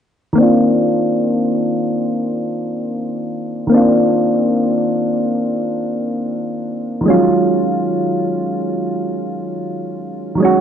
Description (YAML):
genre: hip hop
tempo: free time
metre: none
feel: none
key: unclear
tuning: A4 = 441 Hz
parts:
  - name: soft electric-piano-like synth keys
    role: accompaniment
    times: 0.3-10.6 s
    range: Eb3 to Gb4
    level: -15 LUFS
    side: equal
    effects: chorus, low-pass filter
room: moderate echo chamber reverb, RT60 1.4 s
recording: nothing above 10.3 kHz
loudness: -15 LUFS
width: side -8 dB against mid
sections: 0.4-10.6 A section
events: filter sweep on synth keys 0.4-10.6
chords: 0.4 Cm11; 7.1 Ebm11